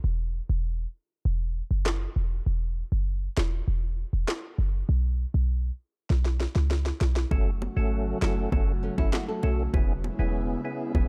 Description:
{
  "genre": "dancehall",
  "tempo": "99 BPM",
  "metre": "4/4",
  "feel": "straight",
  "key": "unclear",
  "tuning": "A4 = 440 Hz",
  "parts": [
    { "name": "short 808-style bass", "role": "bass", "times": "0.0-11.1 s", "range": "E1 to C#2", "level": "-28 LUFS", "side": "equal", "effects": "none" },
    { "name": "afro-pop drum kit", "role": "drums", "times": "1.9-11.1 s", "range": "handclaps, kick drum, rim click, snare drum", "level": "-30 LUFS", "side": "equal", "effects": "overdrive" },
    { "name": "percussive tonewheel organ", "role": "accompaniment", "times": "7.3-11.1 s", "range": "A3 to A4", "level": "-36 LUFS", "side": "equal", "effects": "overdrive, chorus vibrato, stopped rotary speaker" },
    { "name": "airy breathy pad", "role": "sustained chords", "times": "7.5-11.1 s", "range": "C#3 to F#4", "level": "-37 LUFS", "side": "equal", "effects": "chorus, phaser, sidechain pumping" },
    { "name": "bongos", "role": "percussion", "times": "7.3-11.1 s", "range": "none", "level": "-41 LUFS", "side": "equal", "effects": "none" },
    { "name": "nylon-string guitar", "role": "arpeggios", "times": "8.8-9.7 s", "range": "A3 to A4", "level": "-38 LUFS", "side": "equal", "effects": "tape echo" }
  ],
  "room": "small room ambience",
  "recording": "dark, warm production",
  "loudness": "-28 LUFS",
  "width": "mono",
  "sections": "0.0-11.1 A section",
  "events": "break 0.0-7.3; drum fill 6.1-7.3",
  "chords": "0.0 Esus2; 4.9 Bsus2; 7.3 F#m; 9.7 C#m7/E"
}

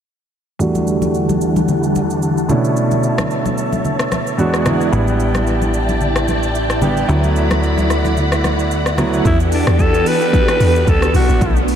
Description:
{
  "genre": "amapiano",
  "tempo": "111 BPM",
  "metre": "4/4",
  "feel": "swing 55% on 16ths",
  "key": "E dorian",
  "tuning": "A4 = 441 Hz",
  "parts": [
    { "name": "warm concert grand piano", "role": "accompaniment", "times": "0.6-9.3 s", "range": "E2 to G4", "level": "-19 LUFS", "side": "right 2 dB", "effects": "low-pass filter" },
    { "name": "soft string machine", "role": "sustained chords", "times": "0.6-11.8 s", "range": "B2 to B5", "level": "-19 LUFS", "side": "equal", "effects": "ensemble chorus, low-pass filter" },
    { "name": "deep house drum kit", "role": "drums", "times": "0.6-11.8 s", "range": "hi-hat, kick drum, rim click, shaker", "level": "-22 LUFS", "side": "equal", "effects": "none" },
    { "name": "congas", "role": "percussion", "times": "0.8-9.1 s", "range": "none", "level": "-23 LUFS", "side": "left 2 dB", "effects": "none" },
    { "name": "plucky analog bass", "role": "bass", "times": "4.9-9.2 s", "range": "A1 to D2", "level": "-18 LUFS", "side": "equal", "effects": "none" },
    { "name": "breathy alto saxophone", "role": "melody", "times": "9.3-11.7 s", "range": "D4 to B4", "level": "-17 LUFS", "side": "equal", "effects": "analog delay" },
    { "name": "deep log drum bass", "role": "bass", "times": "9.3-11.8 s", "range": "A1 to E2", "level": "-15 LUFS", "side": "equal", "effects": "none" }
  ],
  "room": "moderate lush hall reverb, RT60 2.6 s",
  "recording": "dreamy mix soaked in reverb",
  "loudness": "-13 LUFS",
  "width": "side -9 dB against mid",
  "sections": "0.6-9.3 A section; 9.3-11.8 B section",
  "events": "filter sweep 0.6-9.3; kick muted 7.1-9.3; drop 9.3-11.8",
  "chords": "0.6 Em11; 2.5 Bm11; 4.4 E9; 4.9 A7sus4; 7.1 D69; 9.3 Em11; 11.1 Bm7"
}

